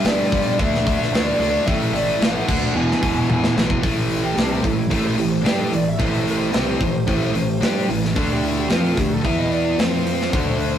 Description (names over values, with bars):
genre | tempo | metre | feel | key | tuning
hard rock | 111 BPM | 4/4 | straight | A minor from 3.8 s | A4 = 440 Hz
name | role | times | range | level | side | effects
smooth overdriven lead guitar | melody | 0.0-10.8 s | D4 to G#5 | -26 LUFS | equal | slapback echo
overdriven electric guitar | riff | 0.0-10.8 s | E2 to G4 | -25 LUFS | right 5 dB | none
scooped high-gain guitar | riff | 0.0-10.8 s | E2 to G4 | -23 LUFS | left 4 dB | distortion
fuzz fingered electric bass | bass | 0.0-10.8 s | E1 to G2 | -26 LUFS | right 1 dB | overdrive
tight metal drum kit | drums | 0.0-10.7 s | crash cymbal, hi-hat, kick drum, snare drum, toms | -22 LUFS | equal | none
room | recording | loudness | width
moderate studio reverb, RT60 0.5 s | rough rehearsal-room recording, warm saturation | -17 LUFS | side -10 dB against mid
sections
0.0-3.8 A section; 3.8-10.8 B section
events
drum fill 3.3-3.8; lead electric guitar solo 3.8-10.8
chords
0.0 G5; 0.6 D5; 1.7 A5; 2.5 D; 2.7 E; 3.8 Am; 8.2 D5; 9.3 E5; 9.8 F5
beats
0.05 0.59 1.13 | 1.67 2.21 2.75 3.29 | 3.83 4.37 4.91 5.45 | 6.00 6.54 7.08 7.62 | 8.17 8.71 9.26 9.80 | 10.34